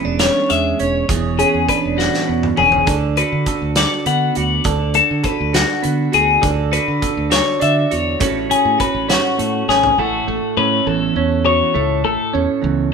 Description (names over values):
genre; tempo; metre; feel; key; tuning
math rock and midwest emo; 68 BPM (dotted quarters); 6/8; straight; A major; A4 = 440 Hz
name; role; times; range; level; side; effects
twelve-string electric guitar; accompaniment; 0.0-12.9 s; E2 to B4; -19 LUFS; right 6 dB; spring reverb
twelve-string electric guitar; arpeggios; 0.0-12.3 s; F#4 to F#5; -17 LUFS; left 7 dB; none
fingered electric bass; bass; 0.1-12.9 s; E1 to D3; -22 LUFS; right 1 dB; none
loose indie drum kit; drums; 0.2-10.0 s; hi-hat, kick drum, snare drum, toms; -22 LUFS; right 1 dB; none
room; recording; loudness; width
moderate stone room reverb, RT60 0.9 s; band playing live in one room; -14 LUFS; side -6 dB against mid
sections
0.0-10.0 A section; 10.0-12.9 B section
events
drum fill 2.0-2.9, 9.7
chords
0.0 E13; 2.9 Bm7/D; 6.4 Dmaj9; 8.2 A69; 10.0 A6